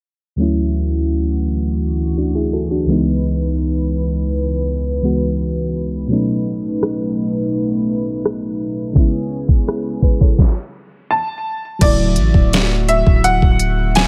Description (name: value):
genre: contemporary R&B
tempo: 84 BPM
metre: 4/4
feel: straight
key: unclear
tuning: A4 = 440 Hz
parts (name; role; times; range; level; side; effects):
- mellow FM electric piano; accompaniment; 0.4-14.1 s; C#2 to C#5; -22 LUFS; equal; chorus
- chorused pulse-width pad; sustained chords; 0.4-14.1 s; C#2 to B4; -24 LUFS; equal; none
- smooth R&B drum kit; drums; 6.8-14.1 s; crash cymbal, hi-hat, kick drum, rim click, snare drum; -16 LUFS; equal; none
- clear baby grand piano; melody; 11.1-14.1 s; D5 to A5; -21 LUFS; equal; delay
- long sustained 808-style bass; bass; 11.8-14.1 s; D1 to A1; -19 LUFS; equal; none
room: light reverb, digital ambience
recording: low-pass filter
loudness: -17 LUFS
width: mono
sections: 0.4-11.8 A section; 11.8-14.1 B section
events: filter sweep 0.4-11.8; stop 10.4-11.8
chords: 0.4 Dmaj9; 2.9 C#m7; 6.1 B7; 9.0 Amaj7/C#; 11.8 Dmaj9